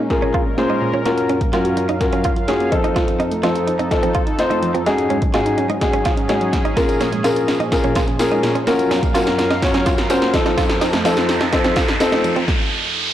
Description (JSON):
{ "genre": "dance-pop", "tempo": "126 BPM", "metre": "4/4", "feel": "straight", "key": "unclear", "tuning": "A4 = 438 Hz", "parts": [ { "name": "sweeping resonant pad", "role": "sustained chords", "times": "0.0-12.5 s", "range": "F2 to F5", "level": "-25 LUFS", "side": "right 1 dB", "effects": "chorus, sidechain pumping" }, { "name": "hollow square pluck", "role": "arpeggios", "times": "0.0-12.5 s", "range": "Ab2 to Gb4", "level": "-26 LUFS", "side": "right 2 dB", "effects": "chorus, sidechain pumping, tape echo" }, { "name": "direct-recorded clean electric guitar", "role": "riff", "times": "0.0-12.4 s", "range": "Ab3 to F4", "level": "-24 LUFS", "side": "right 4 dB", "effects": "wide subtle chorus" }, { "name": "warm concert grand piano", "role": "accompaniment", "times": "0.1-12.3 s", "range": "C4 to Db5", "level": "-19 LUFS", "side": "left 2 dB", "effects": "none" }, { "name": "punchy analog drum machine", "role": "drums", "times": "0.1-12.6 s", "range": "hi-hat, kick drum, snare drum", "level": "-21 LUFS", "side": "equal", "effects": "soft clipping on snare" }, { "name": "tambourine", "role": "percussion", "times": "6.8-12.4 s", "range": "none", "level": "-37 LUFS", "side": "left 3 dB", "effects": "none" }, { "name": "riser", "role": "sound effects", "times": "8.2-13.1 s", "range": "none", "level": "-26 LUFS", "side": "right 2 dB", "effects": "none" } ], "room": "moderate echo chamber reverb, RT60 1.4 s", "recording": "blown-out, overdriven recording, overdrive", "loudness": "-15 LUFS", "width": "side -12 dB against mid", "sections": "0.0-13.1 A section", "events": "build-up 0.0-13.1; drum fill 0.0-12.5; riser 8.2-13.1; stop 12.5-13.1", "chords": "0.0 Bbm7; 1.1 Gbmaj7; 2.7 F7; 4.9 Ab7sus4; 6.8 Bbm7; 8.7 Gbmaj7; 10.3 F7; 12.5 N.C." }